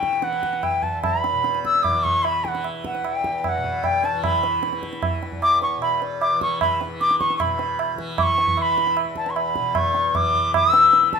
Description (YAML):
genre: indian classical, Hindustani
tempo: 152 BPM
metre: 4/4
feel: straight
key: E raga kafi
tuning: A4 = 439 Hz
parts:
  - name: bright reedy bansuri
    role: melody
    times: 0.0-11.2 s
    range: F#5 to E6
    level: -19 LUFS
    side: left 1 dB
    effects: none
  - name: tanpura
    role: drone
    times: 0.0-11.2 s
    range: E2 to E3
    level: -30 LUFS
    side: left 2 dB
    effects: none
  - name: tabla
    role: percussion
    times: 0.0-11.2 s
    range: none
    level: -27 LUFS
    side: right 4 dB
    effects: none
room: moderate recital hall reverb, RT60 1.6 s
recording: minimal, uncompressed stereo recording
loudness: -19 LUFS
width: side -6 dB against mid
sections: 0.0-7.4 A section; 7.4-11.2 B section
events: speeding up 0.0-11.2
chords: none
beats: 0.23 0.63 | 1.04 1.44 1.84 2.24 | 2.64 3.04 3.44 3.84 | 4.24 4.63 5.03 5.43 | 5.82 6.22 6.62 7.01 | 7.40 7.80 8.19 8.58 | 8.97 9.37 9.76 10.15 | 10.54 10.93